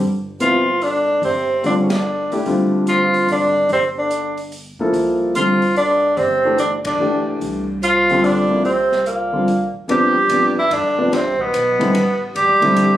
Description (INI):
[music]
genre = modal jazz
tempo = 146 BPM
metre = 3/4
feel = swing 65% on 8ths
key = C major from 9.9 s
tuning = A4 = 440 Hz
[part]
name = upright bass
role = bass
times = 0.0-13.0 s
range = G1 to G2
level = -32 LUFS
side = right 1 dB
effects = none
[part]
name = clear tenor saxophone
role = melody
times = 0.4-13.0 s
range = Bb3 to G4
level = -16 LUFS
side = right 1 dB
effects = none
[part]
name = trombone with cup mute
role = second line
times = 0.4-13.0 s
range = Bb2 to G3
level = -26 LUFS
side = right 2 dB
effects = none
[part]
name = warm baby grand piano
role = accompaniment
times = 0.4-13.0 s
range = C3 to A4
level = -18 LUFS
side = left 1 dB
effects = none
[part]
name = open jazz drum kit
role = drums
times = 0.4-12.9 s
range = hi-hat, kick drum, ride cymbal, snare drum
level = -32 LUFS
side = right 1 dB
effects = none
[sound]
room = moderate studio reverb, RT60 0.5 s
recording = recorded on a phone in the room, club reverb, compression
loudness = -15 LUFS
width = side -13 dB against mid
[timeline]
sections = 0.0-9.9 A section; 9.9-13.0 B section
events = band accent 1.8, 6.8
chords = 0.0 G9sus4; 4.9 C9sus4; 9.9 Cmaj9